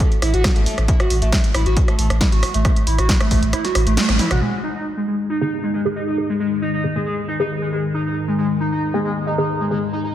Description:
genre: driving peak-time techno.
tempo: 136 BPM.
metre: 4/4.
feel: straight.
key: G# phrygian.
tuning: A4 = 435 Hz.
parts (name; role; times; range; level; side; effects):
overdriven synth lead; riff; 0.0-10.1 s; G#3 to F#4; -22 LUFS; equal; distortion, phaser, lush chorus, sidechain pumping, tape echo.
electronic kick drum; drums; 0.0-3.4 s; none; -17 LUFS; equal; none.
punchy analog drum machine; drums; 0.0-4.4 s; hi-hat, rim click, snare drum, toms; -22 LUFS; equal; none.
saturated sub bass; bass; 0.2-4.4 s; A1; -20 LUFS; equal; tube saturation, sidechain pumping, low-pass filter.
deep dark ambient pad; drone; 5.5-10.1 s; G#2 to D#3; -26 LUFS; left 1 dB; chorus, built-in reverb, sidechain pumping.
filtered dub chord stab; stabs; 5.4-9.8 s; D#3 to G#4; -25 LUFS; equal; phaser, analog chorus, sidechain pumping, diffuse ambient delay.
room: moderate lush hall reverb, RT60 1.7 s.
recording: dreamy mix soaked in reverb.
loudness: -17 LUFS.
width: side -12 dB against mid.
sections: 0.0-4.4 A section; 4.4-10.1 B section.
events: kick drops out 3.5-4.4; band accent 4.0; drum fill 4.1-4.4; filter sweep on synth stab 4.4-10.1.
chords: 0.0 A5; 4.4 G#m.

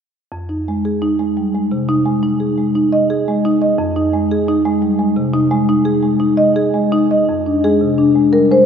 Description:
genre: classical, contemporary piece for solo marimba.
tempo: 87 BPM.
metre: 5/4.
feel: rubato.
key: F minor.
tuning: A4 = 440 Hz.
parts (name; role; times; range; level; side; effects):
marimba with medium hard mallets; solo; 0.3-8.7 s; F2 to Eb5; -13 LUFS; equal; none.
room: wet cathedral reverb, RT60 5.8 s.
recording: recorded in a church or concert hall.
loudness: -13 LUFS.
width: side -7 dB against mid.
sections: 0.3-7.3 A section; 7.3-8.7 B section.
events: none.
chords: 0.3 Fm7; 7.3 Fm6.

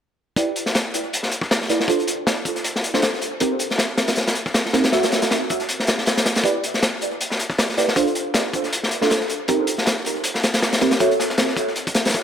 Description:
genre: drum and bass, jungle.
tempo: 158 BPM.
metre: 4/4.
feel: swing 54% on 16ths.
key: unclear.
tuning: A4 = 440 Hz.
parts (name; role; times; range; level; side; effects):
deep mellow chord stab; stabs; 0.4-11.1 s; C4 to E5; -22 LUFS; right 2 dB; chorus, phaser, dub echo.
crunchy breakbeat drum kit; drums; 0.4-12.2 s; hi-hat, kick drum, snare drum; -20 LUFS; left 1 dB; high-pass filter on kick, high-pass filter on hats, high-pass filter on snare, high-pass filter on room.
crunchy breakbeat drum kit; drums; 0.4-12.2 s; hi-hat, snare drum; -30 LUFS; left 1 dB; high-pass filter on hats, high-pass filter on snare, high-pass filter on room, analog delay.
room: moderate echo chamber reverb, RT60 2.2 s.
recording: echo-heavy mix.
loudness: -18 LUFS.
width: side -8 dB against mid.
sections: 0.4-12.2 A section.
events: none.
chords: 0.4 Em7; 1.9 Dm7; 3.4 Cm7; 4.9 F#m7; 6.4 Em7; 8.0 Dm7; 9.5 Cm7; 11.0 F#m7.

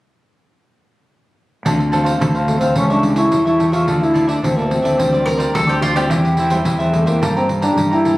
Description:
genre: samba and choro.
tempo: 108 BPM.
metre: 4/4.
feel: straight.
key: D minor.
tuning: A4 = 440 Hz.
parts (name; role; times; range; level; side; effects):
nylon-string guitar; accompaniment; 1.6-8.2 s; A2 to A4; -25 LUFS; left 2 dB; none.
cavaquinho; accompaniment; 1.7-8.2 s; D4 to Bb5; -21 LUFS; right 1 dB; none.
fuzz fingered electric bass; bass; 1.7-8.2 s; C#2 to G2; -19 LUFS; equal; overdrive.
pandeiro; percussion; 1.7-8.2 s; none; -23 LUFS; right 1 dB; none.
breathy trombone; melody; 2.5-8.2 s; A3 to F4; -17 LUFS; equal; none.
mandolin; second line; 5.3-6.8 s; F4 to Bb4; -20 LUFS; equal; none.
room: moderate large studio reverb, RT60 0.9 s.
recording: recorded on a phone in the room, studio ambience.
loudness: -14 LUFS.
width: side -18 dB against mid.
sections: 1.7-8.2 A section.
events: none.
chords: 1.7 Dm7; 2.8 A7/C#; 3.9 Dmadd9; 5.0 G7sus4/D; 6.1 C/E; 7.2 Gmadd9.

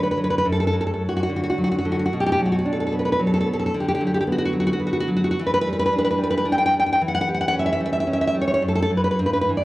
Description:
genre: romantic piece for solo classical guitar.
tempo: 110 BPM.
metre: 3/4.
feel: uneven beats, rubato.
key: unclear.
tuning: A4 = 438 Hz.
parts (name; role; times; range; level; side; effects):
nylon-string guitar; solo; 0.0-9.6 s; F#2 to G5; -19 LUFS; equal; none.
room: moderate recital hall reverb, RT60 1.4 s.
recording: worn, warbling old tape, cassette tape, warbly pitch drift.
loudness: -19 LUFS.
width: side -17 dB against mid.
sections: 0.0-9.6 A section.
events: none.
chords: 0.5 D/F#; 2.1 Bm; 3.7 Bm/D; 5.4 Em7; 7.0 Em69; 8.6 N.C..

